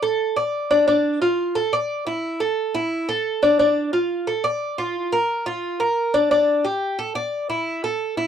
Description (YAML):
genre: latin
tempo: 177 BPM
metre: 4/4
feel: straight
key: D minor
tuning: A4 = 440 Hz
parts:
  - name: Cuban tres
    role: solo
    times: 0.0-8.3 s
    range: D4 to D5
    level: -19 LUFS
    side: equal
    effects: none
room: light reverb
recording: dry, close 1970s-style studio recording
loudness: -19 LUFS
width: side -8 dB against mid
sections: 0.0-8.3 A section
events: none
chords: none